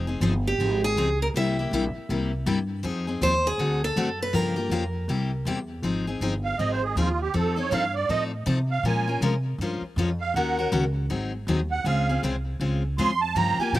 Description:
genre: acoustic string swing (jazz manouche)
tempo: 160 BPM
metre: 4/4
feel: swing 62% on 8ths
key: F minor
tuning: A4 = 440 Hz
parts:
  - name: picked steel-string acoustic guitar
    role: accompaniment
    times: 0.0-13.8 s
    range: C3 to Bb4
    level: -27 LUFS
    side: left 3 dB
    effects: slapback echo
  - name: upright bass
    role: bass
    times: 0.0-13.8 s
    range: F1 to C3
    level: -28 LUFS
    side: equal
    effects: none
  - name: picked steel-string acoustic guitar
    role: melody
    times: 0.2-5.5 s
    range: G4 to E5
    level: -27 LUFS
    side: right 1 dB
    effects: slapback echo
  - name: musette accordion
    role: second line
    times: 6.4-13.8 s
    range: F4 to C6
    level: -26 LUFS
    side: right 5 dB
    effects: slapback echo
room: little or no reverb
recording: recorded outdoors, with no room sound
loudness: -23 LUFS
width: side -15 dB against mid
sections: 0.0-5.8 A section; 5.8-13.8 B section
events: accordion solo 5.8-13.8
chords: 0.0 Fm7; 1.3 C7; 2.8 Fm7; 3.6 D7; 4.3 Gm7b5; 5.1 C7; 5.8 Fm7; 7.3 F7; 8.8 Bbm9; 10.3 Ebm7; 11.1 Ab7; 11.9 Dbmaj7

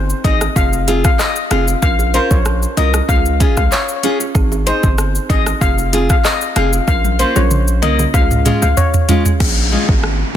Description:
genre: dancehall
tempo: 95 BPM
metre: 4/4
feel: straight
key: unclear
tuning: A4 = 440 Hz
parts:
  - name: hard-hitting 808-style bass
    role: bass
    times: 0.0-10.2 s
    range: F1 to Db2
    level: -17 LUFS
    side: equal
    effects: none
  - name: afro-pop drum kit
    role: drums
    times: 0.1-10.2 s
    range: crash cymbal, handclaps, hi-hat, kick drum, rim click, shaker, toms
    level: -16 LUFS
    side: equal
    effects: none
  - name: steel pan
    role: melody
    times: 0.2-9.2 s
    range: C5 to F5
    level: -19 LUFS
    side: left 5 dB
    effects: ping-pong delay
  - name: folk marimba with medium mallets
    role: accompaniment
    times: 0.2-10.1 s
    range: Bb3 to Bb4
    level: -23 LUFS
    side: right 5 dB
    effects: none
  - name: nylon-string guitar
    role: arpeggios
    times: 0.2-9.9 s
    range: Ab3 to Bb4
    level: -22 LUFS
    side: left 3 dB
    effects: none
  - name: bongos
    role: percussion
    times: 0.2-9.2 s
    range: none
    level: -29 LUFS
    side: right 8 dB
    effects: none
  - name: downlifter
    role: sound effects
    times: 9.4-10.4 s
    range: none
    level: -20 LUFS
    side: left 1 dB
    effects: none
room: studio ambience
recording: dense, heavily limited modern master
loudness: -12 LUFS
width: side -10 dB against mid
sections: 0.0-9.4 A section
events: drum fill 6.9-9.4; break 9.4-10.4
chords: 0.0 Ab; 0.6 Fm; 1.8 Bbm; 3.1 Db; 4.4 Ab; 5.6 Fm; 6.9 Bbm; 8.1 Db; 9.4 Bbm7

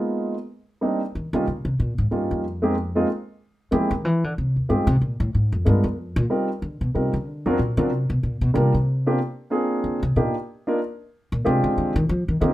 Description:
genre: jazz piano trio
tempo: 186 BPM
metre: 3/4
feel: swing 62% on 8ths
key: Eb major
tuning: A4 = 443 Hz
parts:
  - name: warm concert grand piano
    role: melody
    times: 0.0-12.5 s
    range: F#3 to Bb4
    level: -22 LUFS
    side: equal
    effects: none
  - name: upright bass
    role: bass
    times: 1.2-12.5 s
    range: Eb2 to F3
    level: -22 LUFS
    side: equal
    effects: none
room: moderate studio reverb, RT60 0.6 s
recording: none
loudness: -20 LUFS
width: side -15 dB against mid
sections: 0.0-6.3 A section; 6.3-12.5 A section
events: upright bass solo 0.0-12.5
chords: 0.5 Cm9 (rootless); 1.5 Eb9; 2.4 Ab; 3.4 N.C.; 4.4 F7sus2 (rootless); 5.3 Bb7(no3) (rootless); 6.3 Eb69; 7.3 D7alt; 8.2 Gm7; 9.2 Bb9; 10.1 Ebmaj7(no3); 11.1 Bb13

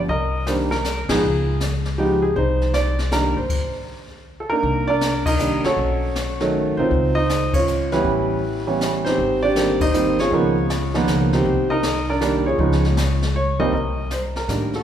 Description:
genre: jazz piano trio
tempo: 158 BPM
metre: 3/4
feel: swing 65% on 8ths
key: unclear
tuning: A4 = 435 Hz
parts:
  - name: warm concert grand piano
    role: melody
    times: 0.0-14.8 s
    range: C2 to Eb5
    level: -20 LUFS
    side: right 1 dB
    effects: none
  - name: upright bass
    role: bass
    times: 0.0-14.8 s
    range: Ab1 to A2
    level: -24 LUFS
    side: left 1 dB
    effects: none
  - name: jazz brush drum kit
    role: drums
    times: 0.1-14.8 s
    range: brushed snare drum, crash cymbal, hi-hat, kick drum, ride cymbal, snare drum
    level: -28 LUFS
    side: left 2 dB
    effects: none
room: moderate concert hall reverb, RT60 2.3 s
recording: recorded in a church or concert hall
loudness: -18 LUFS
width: side -9 dB against mid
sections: 0.0-4.6 A section; 4.6-13.7 B section; 13.7-14.8 A section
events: band accent 1.0, 5.2, 7.5, 9.8; stop 3.5-4.6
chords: 0.1 Cm7; 1.2 Db; 2.4 Cm7; 4.6 Cm9; 5.8 B9; 6.9 Dbmaj9; 8.0 A9; 9.2 Abmaj7; 10.3 Db13; 11.5 Cm7; 12.6 Dbadd9; 13.7 Cm7

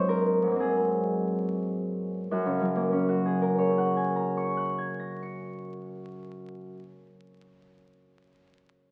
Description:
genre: classical, solo harp piece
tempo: 32-40 BPM (dotted quarters)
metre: 6/8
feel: rubato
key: F# major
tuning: A4 = 440 Hz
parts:
  - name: concert harp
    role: solo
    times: 0.0-7.1 s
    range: F#2 to C#7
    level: -28 LUFS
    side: equal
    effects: none
room: moderate stone room reverb, RT60 1.1 s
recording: very old 78 rpm record, vinyl crackle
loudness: -28 LUFS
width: mono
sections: 0.0-2.3 A section; 2.3-5.6 B section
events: slowing down 0.0-2.3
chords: 0.0 G#9; 2.3 F#add9

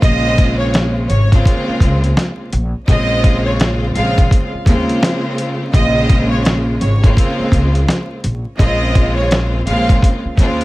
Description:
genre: hip hop, boom-bap hip-hop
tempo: 84 BPM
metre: 4/4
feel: swing 62% on 16ths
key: Bb minor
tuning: A4 = 439 Hz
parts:
  - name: warm studio violin section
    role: melody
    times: 0.0-9.9 s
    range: Db5 to F5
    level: -21 LUFS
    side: right 1 dB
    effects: tape echo
  - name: clear studio string section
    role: accompaniment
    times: 0.0-10.6 s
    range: Db3 to F4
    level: -19 LUFS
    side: equal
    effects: cassette tape
  - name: upright bass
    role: bass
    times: 0.0-10.6 s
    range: Ab1 to Eb2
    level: -17 LUFS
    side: equal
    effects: none
  - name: dusty soul sampler-style drum kit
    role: drums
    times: 0.0-10.6 s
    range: hi-hat, kick drum, snare drum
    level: -13 LUFS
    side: equal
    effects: none
room: light reverb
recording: vinyl crackle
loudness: -12 LUFS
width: side -18 dB against mid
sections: 0.0-10.6 A section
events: none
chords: 0.0 Bbm7

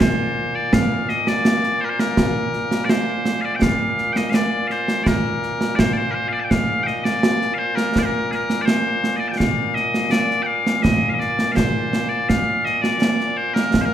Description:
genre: scottish traditional, Scottish pipe music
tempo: 83 BPM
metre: 2/4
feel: straight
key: Bb major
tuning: A4 = 444 Hz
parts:
  - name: loud bright bagpipes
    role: melody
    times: 0.0-13.9 s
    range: Bb2 to A5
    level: -20 LUFS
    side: left 1 dB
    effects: none
  - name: concert snare drum and concert bass drum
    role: drums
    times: 0.0-13.9 s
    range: none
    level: -20 LUFS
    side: right 1 dB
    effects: none
room: moderate concert hall reverb, RT60 1.9 s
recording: recorded in a church or concert hall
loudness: -17 LUFS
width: side -10 dB against mid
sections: 0.0-6.5 A section; 6.5-13.9 A section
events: none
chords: none

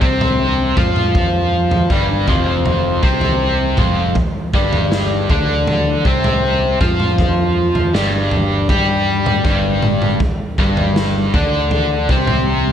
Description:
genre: psychedelic rock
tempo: 80 BPM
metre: 4/4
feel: straight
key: unclear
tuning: A4 = 440 Hz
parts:
  - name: raw garage guitar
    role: riff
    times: 0.0-12.7 s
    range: F2 to G4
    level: -16 LUFS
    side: left 1 dB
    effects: overdrive, harmonic tremolo
  - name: picked electric bass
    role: bass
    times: 0.0-12.7 s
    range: F1 to G2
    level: -20 LUFS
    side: equal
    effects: none
  - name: raw garage drum kit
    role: drums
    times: 0.0-12.5 s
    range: kick drum, snare drum, toms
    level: -18 LUFS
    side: equal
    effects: none
room: light reverb, small room ambience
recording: none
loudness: -13 LUFS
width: side -9 dB against mid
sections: 0.0-12.7 A section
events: none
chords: 0.0 G5

